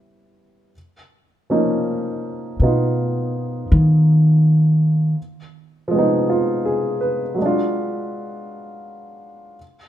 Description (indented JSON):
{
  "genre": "jazz ballad",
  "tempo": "54 BPM",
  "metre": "4/4",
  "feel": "swing 67% on 8ths",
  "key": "unclear",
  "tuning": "A4 = 440 Hz",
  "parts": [
    { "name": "warm upright piano", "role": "accompaniment", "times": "0.0-9.6 s", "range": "E#3 to Cb5", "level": "-21 LUFS", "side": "right 1 dB", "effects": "none" },
    { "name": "upright bass", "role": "bass", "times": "2.6-5.1 s", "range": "B2 to D#3", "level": "-14 LUFS", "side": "equal", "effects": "none" }
  ],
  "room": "light reverb",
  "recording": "minimal, uncompressed stereo recording",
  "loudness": "-16 LUFS",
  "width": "side -11 dB against mid",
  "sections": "0.0-9.9 A section",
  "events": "upright bass solo 0.0-9.9",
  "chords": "0.0 Em6; 0.7 Bmaj9#11; 5.2 Fm7b5; 7.4 Bm6/F#",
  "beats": "| 0.73 1.85 2.96 4.07 | 5.17 6.27 7.37 8.47 | 9.57"
}